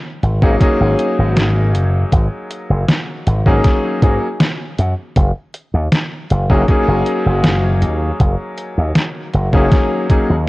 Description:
vaporwave; 79 BPM; 4/4; straight; F# major; A4 = 440 Hz
slap bass with an envelope filter; bass; 0.2-10.5 s; F#1 to G#2; -15 LUFS; equal
detuned 8-bit digital drum machine; drums; 0.2-10.3 s; hi-hat, snare drum; -18 LUFS; equal; overdrive, small room ambience
clear electric grand piano; accompaniment; 0.4-10.3 s; F#3 to G#4; -18 LUFS; left 1 dB; wide subtle chorus, analog delay
electronic kick drum; drums; 0.4-10.3 s; -13 LUFS; equal; overdrive, small room ambience
light reverb; worn, warbling old tape, cassette tape, warbly pitch drift; -13 LUFS; side -20 dB against mid
0.0-10.5 A section
0.0 F#69
0.60 1.36 | 2.12 2.88 3.64 4.40 | 5.16 5.92 6.68 7.44 | 8.20 8.96 9.72 10.48

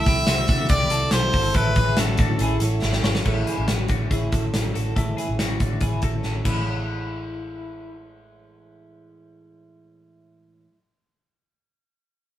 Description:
jangly indie pop; 141 BPM; 4/4; straight; A major; A4 = 441 Hz
brilliant trumpet; melody; 0.0-2.6 s; A4 to E5; -23 LUFS; equal
fingerpicked steel-string acoustic guitar; accompaniment; 0.0-10.8 s; A2 to A4; -31 LUFS; right 3 dB
twelve-string electric guitar; arpeggios; 0.0-7.9 s; C4 to C#5; -30 LUFS; left 2 dB; tremolo
vintage muted picked electric bass; bass; 0.0-10.6 s; G1 to C3; -25 LUFS; equal
big rock drum kit; drums; 0.1-6.5 s; crash cymbal, hi-hat, kick drum, snare drum; -24 LUFS; equal
moderate stone room reverb, RT60 1.2 s; band playing live in one room; -20 LUFS; side -12 dB against mid
0.0-3.2 A section; 3.2-6.7 B section; 6.7-10.1 C section
drum fill 2.8-3.2, 6.2-6.7
0.0 C6; 1.5 Amaj7
0.28 0.70 1.12 | 1.55 1.97 2.40 2.82 | 3.25 3.68 4.10 4.53 | 4.96 5.38 5.81 6.24 | 6.66 7.09 7.52 7.94 | 8.37 8.80 9.22 9.65

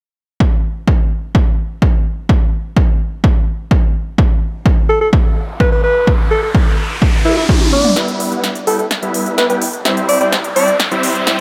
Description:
EDM, festival progressive house; 127 BPM; 4/4; straight; E minor; A4 = 436 Hz
electronic kick drum; drums; 0.4-7.6 s; -15 LUFS; equal; overdrive
riser; sound effects; 5.0-11.4 s; -25 LUFS; equal
mellow alto saxophone; melody; 4.9-10.8 s; D4 to D5; -19 LUFS; equal; tape echo
big-room dance drum kit; drums; 7.3-11.4 s; hi-hat, snare drum, toms; -20 LUFS; equal; overdrive, high-pass filter on toms, high-pass filter on snare, high-pass filter on hats, high-pass filter on room
supersaw chords; riff; 8.0-11.4 s; G3 to A5; -20 LUFS; equal; sidechain pumping, low-pass filter
digital ambience; -14 LUFS; mono
0.4-8.0 A section; 8.0-11.4 B section
riser 5.0-8.0, 8.0-11.4; drum fill 7.3-8.0, 8.0-11.4; build-up 8.0-11.4; filter sweep on supersaw synth 8.0-11.4
0.4 N.C.; 8.0 Em; 9.9 C
| 0.40 0.88 1.35 1.82 | 2.29 2.77 3.24 3.71 | 4.18 4.66 5.13 5.60 | 6.07 6.55 7.02 7.49 | 7.96 8.44 8.91 9.38 | 9.85 10.32 10.80 11.27

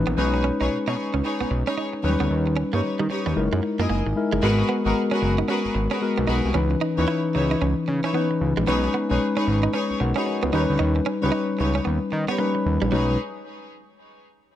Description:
R&B; 113 BPM; 4/4; swing 62% on 16ths; B major; A4 = 441 Hz
mellow tine electric piano; accompaniment; 0.0-13.2 s; E3 to B5; -24 LUFS; left 3 dB
fat analog bass; bass; 0.0-13.2 s; F#1 to D#3; -24 LUFS; right 1 dB
direct-recorded clean electric guitar; riff; 0.1-13.1 s; F#3 to E4; -30 LUFS; right 7 dB; analog chorus
rich studio string section; stabs; 0.2-13.1 s; D#4 to D#5; -29 LUFS; equal; tape echo
little or no reverb; -20 LUFS; side -12 dB against mid
0.0-4.4 A section; 4.4-12.9 B section; 12.9-14.6 C section
tine electric piano fill 3.6-4.4, 12.1-12.9
0.2 B69; 2.0 D#7b13; 3.4 F#13; 4.4 G#m9; 6.5 C#m9; 8.7 B69; 10.5 D#7b13; 12.9 B69
| 0.18 0.71 1.24 1.77 | 2.30 2.83 3.37 3.90 | 4.43 4.96 5.49 6.02 | 6.55 7.08 7.61 8.14 | 8.67 9.21 9.74 10.27 | 10.80 11.33 11.86 12.39 | 12.92

